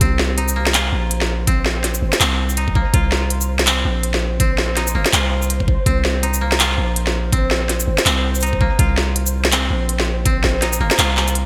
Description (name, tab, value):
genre	half-time drum and bass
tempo	164 BPM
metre	4/4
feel	swing 58% on 16ths, half-time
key	C minor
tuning	A4 = 439 Hz
part	koto	arpeggios	0.0-11.5 s	Bb3 to F4	-27 LUFS	equal	vintage 12-bit sampler grit, digital delay
part	long sustained 808-style bass	bass	0.0-11.5 s	G1 to C2	-22 LUFS	equal	none
part	electronic kick drum	drums	0.0-10.5 s	none	-20 LUFS	equal	overdrive
part	organic electronic drum kit	drums	0.0-11.4 s	handclaps, hi-hat, shaker, snare drum	-21 LUFS	equal	none
part	pulsing gated texture	texture	0.0-11.5 s	C5	-32 LUFS	equal	chorus, built-in reverb
room	light reverb, digital ambience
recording	bright 1980s-style digital production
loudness	-18 LUFS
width	mono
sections	0.0-11.5 A section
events	none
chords	0.0 C5